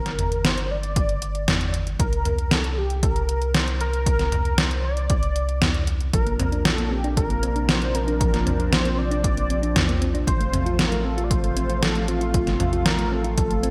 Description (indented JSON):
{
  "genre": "synthwave",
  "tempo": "116 BPM",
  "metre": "4/4",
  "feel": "straight",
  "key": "unclear",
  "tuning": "A4 = 441 Hz",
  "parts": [
    { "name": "unison lead", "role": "melody", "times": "0.0-13.7 s", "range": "F4 to D5", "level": "-31 LUFS", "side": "equal", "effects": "analog chorus, digital delay" },
    { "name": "round analog bass", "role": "bass", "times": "0.0-13.7 s", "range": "G1 to C2", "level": "-28 LUFS", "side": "equal", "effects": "none" },
    { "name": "detuned 8-bit digital drum machine", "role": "drums", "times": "0.1-13.7 s", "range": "hi-hat, snare drum, toms", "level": "-26 LUFS", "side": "equal", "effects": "gated reverb" },
    { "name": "electronic kick drum", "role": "drums", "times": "1.0-13.5 s", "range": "none", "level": "-27 LUFS", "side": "equal", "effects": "none" },
    { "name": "lush unison pad", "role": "sustained chords", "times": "6.1-13.7 s", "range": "C3 to F4", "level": "-32 LUFS", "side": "equal", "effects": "chorus, sidechain pumping" },
    { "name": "thumb-piano-like synth pluck", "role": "arpeggios", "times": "6.1-13.7 s", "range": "F3 to F4", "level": "-31 LUFS", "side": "equal", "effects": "chorus, cassette tape, digital delay" }
  ],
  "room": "moderate lush hall reverb, RT60 1.6 s",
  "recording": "bright 1980s-style digital production",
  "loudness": "-22 LUFS",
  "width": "mono",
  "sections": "0.0-13.7 A section",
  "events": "none",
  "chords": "0.0 Gm; 2.0 Bbadd9/C; 6.1 Bbadd9; 10.3 F/A"
}